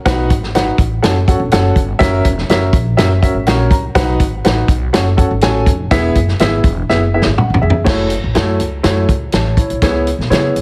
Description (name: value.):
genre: uptempo 1960s-style soul.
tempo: 123 BPM.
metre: 4/4.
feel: straight.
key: F# dorian.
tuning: A4 = 440 Hz.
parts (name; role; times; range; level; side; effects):
warm upright piano; accompaniment; 0.1-10.6 s; A3 to A#5; -19 LUFS; equal; none.
upright bass; bass; 0.1-10.6 s; E1 to C#3; -20 LUFS; equal; none.
vintage drum kit; drums; 0.1-10.6 s; crash cymbal, hi-hat, kick drum, snare drum, toms; -17 LUFS; equal; none.
room: light reverb, studio ambience.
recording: heavily compressed radio sound.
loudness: -14 LUFS.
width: mono.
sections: 0.0-7.9 A section; 7.9-10.6 B section.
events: upright piano fill 3.2-4.0; drum fill 6.9-7.9.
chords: 0.1 B; 1.0 F#m; 2.0 F#7; 4.0 B; 4.9 F#m; 5.9 E; 7.9 F#m7; 9.8 C#m7.